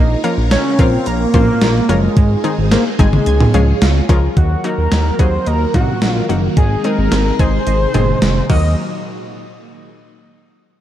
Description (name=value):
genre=synth-pop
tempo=109 BPM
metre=4/4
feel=straight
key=Eb dorian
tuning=A4 = 440 Hz
part: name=octave-doubled lead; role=melody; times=0.0-8.8 s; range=Ab3 to Eb5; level=-19 LUFS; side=equal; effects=chorus, tape echo
part: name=phased string machine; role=sustained chords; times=0.0-8.8 s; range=Bb2 to Bb5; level=-23 LUFS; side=equal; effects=ensemble chorus, phaser
part: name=analog pluck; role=arpeggios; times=0.0-8.8 s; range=Eb3 to Ab6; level=-26 LUFS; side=right 6 dB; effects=chorus, tape echo
part: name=chorused synth bass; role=bass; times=0.0-8.8 s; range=F1 to Eb2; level=-16 LUFS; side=equal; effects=none
part: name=analog pluck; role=accompaniment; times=0.2-8.8 s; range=Eb3 to C5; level=-22 LUFS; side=left 2 dB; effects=chorus
part: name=gated 80s digital drum machine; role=drums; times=0.2-8.6 s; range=cowbell, crash cymbal, hi-hat, kick drum, snare drum, toms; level=-15 LUFS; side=equal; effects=gated reverb, gated reverb snare, overdrive
room=light reverb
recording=dark, warm production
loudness=-12 LUFS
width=side -12 dB against mid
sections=0.0-4.4 A section; 4.4-8.8 B section; 8.8-10.8 C section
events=none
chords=0.0 Bbm; 2.2 Ab; 3.3 Db; 4.4 Ebm; 6.6 Ab; 8.5 Ebm; 8.8 N.C.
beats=0.52 1.06 1.62 | 2.17 2.72 3.27 3.82 | 4.37 4.92 5.47 6.02 | 6.57 7.12 7.67 8.22